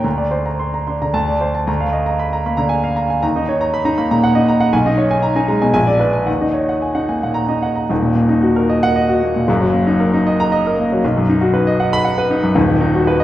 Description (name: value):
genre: classical, virtuoso piano study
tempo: 108-123 BPM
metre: 3/4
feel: rubato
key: Eb minor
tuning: A4 = 439 Hz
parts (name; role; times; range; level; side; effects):
- clear grand piano; solo; 0.0-13.2 s; Eb1 to C6; -14 LUFS; equal; none
room: wet recital hall reverb, RT60 1.6 s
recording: heard from further back in the room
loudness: -14 LUFS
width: side -13 dB against mid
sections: 0.0-7.9 A section; 7.9-13.2 B section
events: none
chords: 0.0 Bbadd9/D; 1.1 D5; 1.7 Bb7/D; 3.2 Ebm; 4.7 Abm/Cb; 5.7 Bb7; 6.3 Ebm; 9.5 Ebm/Gb; 11.0 B; 12.6 B/D#